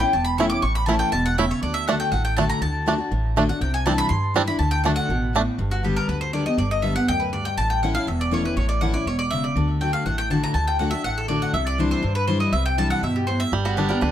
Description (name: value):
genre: bluegrass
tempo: 242 BPM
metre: 4/4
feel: straight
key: D mixolydian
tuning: A4 = 440 Hz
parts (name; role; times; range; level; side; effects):
- mandolin; melody; 0.0-14.1 s; F#4 to D6; -25 LUFS; equal; tape echo
- picked steel-string acoustic guitar; accompaniment; 0.0-14.1 s; E2 to G4; -24 LUFS; left 2 dB; none
- upright bass; bass; 0.0-14.1 s; E1 to G2; -26 LUFS; equal; none
- bluegrass banjo; arpeggios; 0.4-5.4, 13.5-14.1 s; G3 to E4; -23 LUFS; right 4 dB; none
room: light reverb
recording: close, detailed microphones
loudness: -20 LUFS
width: side -10 dB against mid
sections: 0.0-5.6 A section; 5.6-14.1 B section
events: mandolin solo 0.0-5.6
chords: 0.0 A; 1.6 D; 3.6 Cadd9; 4.6 D; 5.6 G; 7.6 A; 9.6 D; 11.5 Cadd9; 13.5 G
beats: 0.14 0.39 | 0.64 0.89 1.13 1.38 | 1.63 1.88 2.13 2.37 | 2.62 2.87 3.12 3.37 | 3.61 3.86 4.11 4.36 | 4.60 4.85 5.10 5.35 | 5.59 5.84 6.09 6.34 | 6.58 6.83 7.08 7.33 | 7.58 7.82 8.07 8.32 | 8.57 8.82 9.06 9.31 | 9.56 9.81 10.05 10.30 | 10.55 10.80 11.05 11.29 | 11.54 11.79 12.04 12.29 | 12.54 12.78 13.03 13.28 | 13.53 13.77 14.02